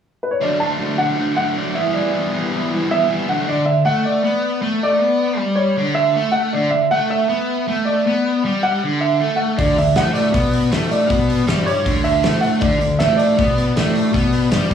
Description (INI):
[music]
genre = indie rock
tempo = 157 BPM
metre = 4/4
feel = straight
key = D major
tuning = A4 = 441 Hz
[part]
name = dark upright piano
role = melody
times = 0.2-14.7 s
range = B4 to A5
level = -19 LUFS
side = right 1 dB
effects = slapback echo
[part]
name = fuzz guitar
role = riff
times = 0.4-14.7 s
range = D3 to E4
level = -19 LUFS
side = left 1 dB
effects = distortion, slapback echo
[part]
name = fuzz fingered electric bass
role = bass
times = 9.6-14.7 s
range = D2 to B2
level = -21 LUFS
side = equal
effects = overdrive
[part]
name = loose indie drum kit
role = drums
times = 9.6-14.7 s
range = hi-hat, kick drum, snare drum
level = -21 LUFS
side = equal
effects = none
[sound]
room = little or no reverb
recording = live gig heard through the venue's PA, club reverb, small room reverb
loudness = -15 LUFS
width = side -8 dB against mid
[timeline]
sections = 0.4-3.5 A section; 3.5-14.7 B section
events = none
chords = 0.4 D; 1.8 Em7; 3.3 D; 3.5 D5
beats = 0.04 | 0.42 0.80 1.18 1.56 | 1.95 2.33 2.71 3.09 | 3.48 3.86 4.24 4.62 | 5.01 5.39 5.77 6.15 | 6.53 6.92 7.30 7.68 | 8.06 8.44 8.82 9.20 | 9.58 9.96 10.34 10.72 | 11.10 11.48 11.86 12.24 | 12.62 13.00 13.38 13.76 | 14.14 14.51